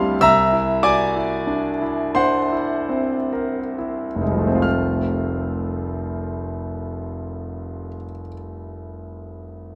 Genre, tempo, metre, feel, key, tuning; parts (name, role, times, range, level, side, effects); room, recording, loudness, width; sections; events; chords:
classical, impressionist solo piano; 22-35 BPM (dotted quarters); 6/8; rubato; F major; A4 = 441 Hz
clear concert grand piano; solo; 0.0-9.8 s; F1 to A6; -22 LUFS; equal
light reverb; close, detailed microphones; -21 LUFS; mono
0.0-4.6 A section; 4.6-9.3 B section
slowing down 0.0-4.6
0.3 Caug7; 4.6 F